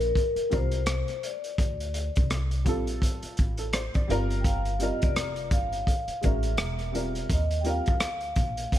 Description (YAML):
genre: hip hop, jazz-hop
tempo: 84 BPM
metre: 4/4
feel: swing 59% on 16ths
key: G minor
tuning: A4 = 440 Hz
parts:
  - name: vibraphone with medium mallets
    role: melody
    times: 0.0-8.8 s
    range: Bb4 to G5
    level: -31 LUFS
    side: left 1 dB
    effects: none
  - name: upright bass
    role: bass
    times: 0.0-8.8 s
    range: E1 to Eb2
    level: -30 LUFS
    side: equal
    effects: none
  - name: crunchy breakbeat drum kit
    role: drums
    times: 0.0-8.8 s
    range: hi-hat, kick drum, rim click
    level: -28 LUFS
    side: equal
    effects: none
  - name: dark upright piano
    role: accompaniment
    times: 0.5-7.9 s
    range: G3 to D5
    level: -32 LUFS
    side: equal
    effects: none
room: little or no reverb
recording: none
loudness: -25 LUFS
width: side -12 dB against mid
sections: 0.0-8.8 A section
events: none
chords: 0.0 Gm11; 1.6 D7sus4; 4.1 Gm11; 6.6 Eadd9; 7.3 Ebmaj9